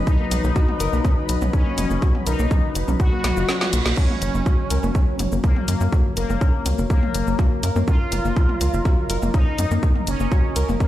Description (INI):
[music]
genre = melodic techno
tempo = 123 BPM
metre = 4/4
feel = straight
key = unclear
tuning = A4 = 438 Hz
[part]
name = deep dark ambient pad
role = sustained chords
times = 0.0-10.9 s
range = F#3 to B5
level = -30 LUFS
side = equal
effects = chorus, built-in reverb, sidechain pumping
[part]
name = soft round pluck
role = arpeggios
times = 0.0-10.9 s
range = Bb3 to Bb4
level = -29 LUFS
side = left 2 dB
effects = chorus, sidechain pumping, ping-pong delay
[part]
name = tight sequencer bass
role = bass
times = 0.0-10.8 s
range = F#1 to Gb2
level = -22 LUFS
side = equal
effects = tube saturation, sidechain pumping
[part]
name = resonant sweep polysynth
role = melody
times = 0.1-10.9 s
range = Bb3 to F#4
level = -27 LUFS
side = left 2 dB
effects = chorus, sidechain pumping, dub echo
[part]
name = deep house drum kit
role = drums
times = 0.1-10.9 s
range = crash cymbal, hi-hat, shaker, snare drum, toms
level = -29 LUFS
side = left 1 dB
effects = sidechain pumping on perc, sidechain pumping on toms, sidechain pumping on hats, sidechain pumping on cymbals
[part]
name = electronic kick drum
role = drums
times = 0.1-10.9 s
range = none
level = -18 LUFS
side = equal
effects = none
[part]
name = reverse cymbal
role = sound effects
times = 3.3-4.0 s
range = none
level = -33 LUFS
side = right 6 dB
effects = none
[sound]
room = digital ambience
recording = played on a big sound system in a bare room, stone room reverb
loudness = -18 LUFS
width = side -14 dB against mid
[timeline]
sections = 0.0-10.9 A section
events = drum fill 3.2-4.0; reverse cymbal 3.3-4.0; kick drops out 3.5-4.0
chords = 0.0 B; 4.0 Gb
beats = | 0.07 0.56 1.05 1.53 | 2.02 2.51 3.00 3.49 | 3.97 4.46 4.95 5.44 | 5.92 6.41 6.90 7.39 | 7.88 8.36 8.85 9.34 | 9.83 10.31 10.80